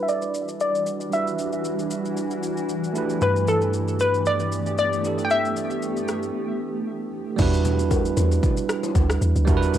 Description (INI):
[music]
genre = amapiano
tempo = 115 BPM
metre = 4/4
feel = swing 55% on 16ths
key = E minor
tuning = A4 = 440 Hz
[part]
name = hollow square pluck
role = melody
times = 0.0-7.1 s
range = A4 to G5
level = -24 LUFS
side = left 2 dB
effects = chorus, low-pass filter, cassette tape, tape echo
[part]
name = bell-like tine electric piano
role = accompaniment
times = 0.0-9.8 s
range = G3 to B4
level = -27 LUFS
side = right 7 dB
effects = low-pass filter, cassette tape
[part]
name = granular cloud pad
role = sustained chords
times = 0.0-7.4 s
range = E3 to G4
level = -30 LUFS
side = left 2 dB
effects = built-in reverb, low-pass filter, cassette tape
[part]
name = deep house drum kit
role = drums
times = 0.1-9.8 s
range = crash cymbal, kick drum, rim click, shaker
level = -27 LUFS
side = equal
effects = overdrive, cassette tape
[part]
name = plucky analog bass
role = bass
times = 3.2-6.3 s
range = G2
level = -28 LUFS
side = equal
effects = none
[part]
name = deep log drum bass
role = bass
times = 7.4-9.8 s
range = D2 to E2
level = -21 LUFS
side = equal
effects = none
[part]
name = congas and bongos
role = percussion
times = 7.4-9.8 s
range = none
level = -30 LUFS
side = left 7 dB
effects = none
[sound]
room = light reverb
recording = home recording on cassette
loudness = -21 LUFS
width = side -10 dB against mid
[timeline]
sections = 0.0-7.4 A section; 7.4-9.8 B section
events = filter sweep 0.0-7.4; break 6.3-7.4; drop 7.4-9.8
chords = 0.0 Em9; 3.0 G69; 7.4 Em9